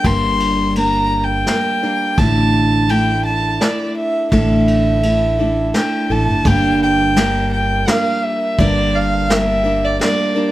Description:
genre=acoustic folk duo or small band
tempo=84 BPM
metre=3/4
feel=straight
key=G dorian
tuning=A4 = 440 Hz
part: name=dark fiddle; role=melody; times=0.0-10.5 s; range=D5 to C6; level=-18 LUFS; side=right 1 dB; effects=none
part: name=picked steel-string acoustic guitar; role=accompaniment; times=0.0-10.5 s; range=G2 to Bb4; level=-18 LUFS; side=equal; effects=none
part: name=upright bass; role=bass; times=0.0-10.0 s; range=G1 to A1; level=-20 LUFS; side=equal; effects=none
part: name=vintage brush drum kit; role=drums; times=0.0-10.2 s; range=kick drum, ride cymbal, snare drum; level=-23 LUFS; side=equal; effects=none
room=light reverb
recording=none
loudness=-13 LUFS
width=side -15 dB against mid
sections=0.0-6.5 A section; 6.5-10.5 B section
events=none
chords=0.0 Gm; 2.2 Dsus2/A; 6.5 Gm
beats=| 0.04 0.76 1.47 | 2.18 2.89 3.60 | 4.32 5.03 5.74 | 6.45 7.16 7.87 | 8.58 9.29 10.00

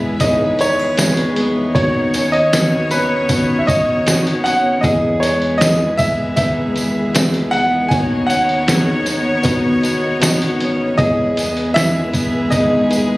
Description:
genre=pop ballad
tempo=78 BPM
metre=4/4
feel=straight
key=E major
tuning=A4 = 439 Hz
part: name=clear concert grand piano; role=melody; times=0.0-13.2 s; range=B4 to G#5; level=-18 LUFS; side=equal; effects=none
part: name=felt-muted upright piano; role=accompaniment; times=0.0-13.2 s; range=D#2 to E5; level=-20 LUFS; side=equal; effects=none
part: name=warm studio string section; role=sustained chords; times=0.0-13.2 s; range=D#3 to C#5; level=-22 LUFS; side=left 1 dB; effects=none
part: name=picked steel-string acoustic guitar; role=arpeggios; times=0.0-13.2 s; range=E2 to G#4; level=-23 LUFS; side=equal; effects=none
part: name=lo-fi sampler-style drum kit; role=drums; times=0.2-13.1 s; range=hi-hat, kick drum, snare drum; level=-19 LUFS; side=equal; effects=none
part: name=tambourine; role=percussion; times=0.2-13.1 s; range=none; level=-27 LUFS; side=right 1 dB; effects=none
room=light reverb, small room ambience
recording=recorded on a phone in the room, club reverb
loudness=-13 LUFS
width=side -19 dB against mid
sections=0.0-13.2 A section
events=none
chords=0.0 Emaj7; 1.8 Badd9/D#; 4.8 Emaj7; 7.9 Badd9/D#; 11.0 Emaj7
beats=0.21 0.98 | 1.75 2.52 3.29 4.06 | 4.83 5.60 6.37 7.14 | 7.91 8.68 9.45 10.21 | 10.98 11.75 12.52

